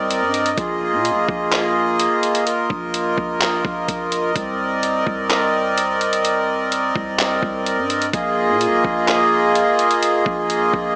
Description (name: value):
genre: hip hop, atmospheric cloud-rap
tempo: 127 BPM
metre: 4/4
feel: half-time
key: unclear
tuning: A4 = 441 Hz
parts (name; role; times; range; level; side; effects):
- accordion; sustained chords; 0.0-11.0 s; Bb3 to Eb5; -17 LUFS; equal; sidechain pumping
- long sustained 808-style bass; bass; 0.0-11.0 s; Bb1 to Bb2; -30 LUFS; equal; none
- trip hop sampler-style drum kit; drums; 0.1-10.8 s; handclaps, hi-hat, kick drum; -22 LUFS; equal; none
room: moderate echo chamber reverb, RT60 1.9 s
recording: small speaker sound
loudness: -16 LUFS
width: side -26 dB against mid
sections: 0.0-11.0 A section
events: none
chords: 0.0 Cm9; 0.6 Bb7sus4; 4.4 Cm9; 8.1 Bb7sus4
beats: 0.10 | 0.58 1.05 1.52 1.99 | 2.47 2.94 3.41 3.88 | 4.36 4.83 5.30 5.77 | 6.25 6.72 7.19 7.66 | 8.13 8.61 9.08 9.55 | 10.03 10.50